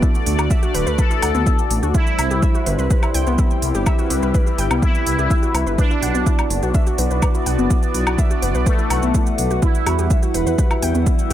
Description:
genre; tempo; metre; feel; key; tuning
melodic techno; 125 BPM; 4/4; straight; unclear; A4 = 440 Hz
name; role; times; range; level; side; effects
sweeping resonant pad; sustained chords; 0.0-11.3 s; G3 to E5; -27 LUFS; left 2 dB; chorus, sidechain pumping
warbly dusty pluck; arpeggios; 0.0-11.3 s; B3 to G5; -26 LUFS; equal; chorus, sidechain pumping, tape echo
electronic kick drum; drums; 0.0-11.2 s; none; -18 LUFS; equal; none
electronic shaker, hi-hat and woodblock; drums; 0.0-11.3 s; none; -26 LUFS; right 1 dB; none
warbly tape-like pad; texture; 0.0-11.3 s; G3 to G5; -28 LUFS; left 1 dB; chorus, built-in reverb, phaser, sidechain pumping
swelling detuned saw bass; bass; 0.3-11.3 s; D1 to E2; -21 LUFS; equal; sidechain pumping
resonant sweep polysynth; melody; 1.0-10.5 s; A3 to A4; -24 LUFS; equal; chorus, sidechain pumping, ping-pong delay
room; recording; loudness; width
little or no reverb; none; -16 LUFS; side -12 dB against mid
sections
0.0-11.3 A section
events
none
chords
0.0 D; 1.9 C; 5.8 Bm; 9.6 Emadd9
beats
| 0.03 0.51 0.98 1.47 | 1.95 2.42 2.90 3.38 | 3.87 4.34 4.83 5.30 | 5.79 6.26 6.75 7.22 | 7.71 8.19 8.66 9.14 | 9.62 10.11 10.59 11.06

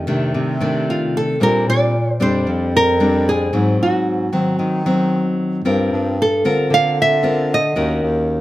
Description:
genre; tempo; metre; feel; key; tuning
bossa nova; 113 BPM; 4/4; straight; unclear; A4 = 440 Hz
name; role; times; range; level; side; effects
nylon-string guitar; melody; 0.0-8.4 s; F4 to F5; -18 LUFS; right 1 dB; none
nylon-string guitar; accompaniment; 0.0-8.4 s; F2 to Bb4; -19 LUFS; left 1 dB; none
warm bass clarinet; bass; 0.0-8.4 s; Eb2 to D#3; -22 LUFS; equal; none
room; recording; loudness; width
light reverb; close, detailed microphones; -15 LUFS; side -15 dB against mid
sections
0.0-8.4 A section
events
none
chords
0.0 F13; 1.4 Bb69; 3.5 G#7; 5.6 Gm11; 7.8 Ebm7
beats
0.34 0.87 | 1.40 1.93 2.46 2.99 | 3.52 4.05 4.58 5.11 | 5.64 6.17 6.70 7.23 | 7.76 8.29

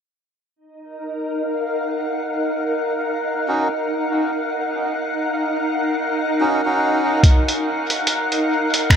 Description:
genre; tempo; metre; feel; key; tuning
ambient dub; 72 BPM; 4/4; swing 60% on 16ths; Eb minor; A4 = 440 Hz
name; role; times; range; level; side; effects
soft additive organ-like pad; sustained chords; 0.9-9.0 s; Eb4 to Gb5; -20 LUFS; equal; ensemble chorus, built-in reverb
melodica; stabs; 3.5-7.2 s; Db4 to Gb4; -24 LUFS; right 2 dB; vintage 12-bit sampler grit, low-pass filter, dub echo
electronic kick drum; drums; 7.2-9.0 s; none; -12 LUFS; equal; overdrive
lo-fi sampler-style drum kit; drums; 7.2-9.0 s; finger snaps, hi-hat; -21 LUFS; right 1 dB; none
room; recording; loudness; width
light reverb; echo-heavy mix; -18 LUFS; side -8 dB against mid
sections
0.6-7.2 A section; 7.2-9.0 B section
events
filter sweep on ambient pad 0.6-7.2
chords
0.6 Ebm7; 7.2 Ebm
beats
| 0.57 1.40 2.23 3.07 | 3.90 4.74 5.57 6.40 | 7.24 8.07 8.90

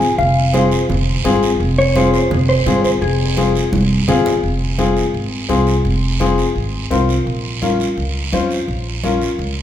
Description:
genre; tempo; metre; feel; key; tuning
latin, cumbia; 170 BPM; 4/4; straight; F minor; A4 = 437 Hz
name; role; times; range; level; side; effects
mellow electric guitar; melody; 0.0-3.7 s; Ab4 to Ab5; -18 LUFS; equal; spring reverb
warm upright piano; accompaniment; 0.0-9.3 s; C4 to C5; -18 LUFS; left 4 dB; none
upright bass; bass; 0.0-9.6 s; F1 to F2; -19 LUFS; right 1 dB; none
guiro; percussion; 0.0-9.6 s; none; -28 LUFS; right 6 dB; none
congas; percussion; 0.2-9.6 s; none; -22 LUFS; right 1 dB; none
room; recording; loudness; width
wet recital hall reverb, RT60 1.7 s; recorded in a church or concert hall; -14 LUFS; side -11 dB against mid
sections
0.0-4.4 A section; 4.4-9.6 B section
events
drum fill 3.7-4.4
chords
0.0 Fm; 7.3 Bbm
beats
| 0.19 0.54 0.90 1.25 | 1.60 1.96 2.31 2.66 | 3.02 3.37 3.73 4.08 | 4.43 4.79 5.14 5.50 | 5.85 6.20 6.56 6.91 | 7.26 7.62 7.97 8.33 | 8.68 9.03 9.39

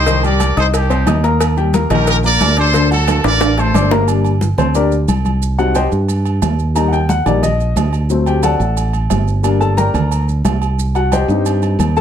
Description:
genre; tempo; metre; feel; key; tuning
latin, salsa; 179 BPM; 4/4; straight; G harmonic minor; A4 = 440 Hz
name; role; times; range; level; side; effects
bright trumpet section; melody; 0.0-3.9 s; Eb4 to D5; -17 LUFS; right 1 dB; none
warm upright piano; accompaniment; 0.0-12.0 s; D3 to Eb6; -17 LUFS; left 4 dB; none
fingered electric bass; bass; 0.0-12.0 s; G1 to G2; -15 LUFS; right 1 dB; none
congas; percussion; 0.1-12.0 s; none; -22 LUFS; left 2 dB; none
cowbell and bongos; percussion; 0.1-4.1 s; none; -24 LUFS; left 5 dB; none
maracas; percussion; 0.1-12.0 s; none; -32 LUFS; right 10 dB; none
agogo bells and timbales; percussion; 0.2-12.0 s; none; -23 LUFS; right 11 dB; none
room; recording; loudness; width
light reverb; close, detailed microphones; -12 LUFS; side -9 dB against mid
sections
0.0-4.1 A section; 4.1-12.0 B section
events
drum fill 3.1-4.1; upright piano solo 4.1-12.0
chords
0.1 Cm; 1.4 Eb; 2.7 D7; 4.1 Gm; 5.4 Cm; 6.8 Eb; 8.1 D7; 9.4 Gm; 10.8 Cm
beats
| 0.07 0.40 0.74 1.07 | 1.41 1.74 2.08 2.41 | 2.74 3.08 3.41 3.75 | 4.08 4.42 4.75 5.09 | 5.42 5.76 6.09 6.42 | 6.76 7.09 7.43 7.77 | 8.10 8.44 8.77 9.11 | 9.44 9.78 10.11 10.45 | 10.79 11.12 11.46 11.79

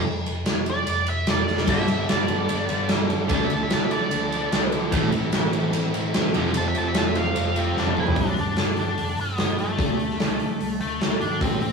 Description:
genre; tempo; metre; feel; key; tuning
hard rock; 148 BPM; 4/4; straight; unclear; A4 = 435 Hz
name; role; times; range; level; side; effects
picked electric bass; bass; 0.0-11.7 s; F1 to D2; -29 LUFS; left 1 dB; none
big rock drum kit; drums; 0.3-11.7 s; crash cymbal, hi-hat, kick drum, ride cymbal, snare drum, toms; -24 LUFS; right 1 dB; none
nasal lead guitar with a parked wah; melody; 0.7-11.7 s; A3 to A5; -27 LUFS; left 1 dB; overdrive
overdriven tonewheel organ; sustained chords; 1.7-8.2 s; F3 to E5; -35 LUFS; left 1 dB; none
cranked stack guitar; riff; 1.7-6.5 s; F2 to D4; -28 LUFS; right 4 dB; overdrive, harmonic tremolo
crunchy overdriven guitar; riff; 1.7-11.6 s; F2 to D4; -28 LUFS; left 4 dB; none
overdriven electric guitar; riff; 1.7-8.2 s; G2 to F4; -27 LUFS; right 1 dB; none
room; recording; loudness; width
moderate stone room reverb, RT60 1.0 s; rough rehearsal-room recording, tube saturation, small room ambience; -21 LUFS; side -5 dB against mid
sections
0.0-8.2 A section; 8.2-11.7 B section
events
lead electric guitar solo 0.0-8.2; drum fill 1.5, 7.8-8.2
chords
0.0 F5; 1.7 G; 3.3 Dmadd9; 4.9 Am; 6.3 F; 8.2 G; 9.8 D5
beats
| 0.05 0.46 0.87 1.27 | 1.68 2.08 2.49 2.90 | 3.30 3.71 4.11 4.52 | 4.92 5.33 5.73 6.13 | 6.54 6.95 7.35 7.76 | 8.16 8.57 8.98 9.38 | 9.79 10.20 10.61 11.01 | 11.42

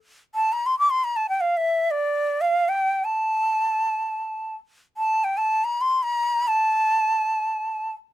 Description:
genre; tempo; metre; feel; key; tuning
Persian modal ensemble; free time; none; none; A dastgah shur; A4 = 439 Hz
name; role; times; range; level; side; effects
bright ney; solo; 0.3-7.9 s; D5 to D6; -20 LUFS; equal; none
room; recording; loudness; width
light reverb; close, detailed microphones; -21 LUFS; side -14 dB against mid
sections
0.1-8.1 A section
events
none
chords
none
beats
free time

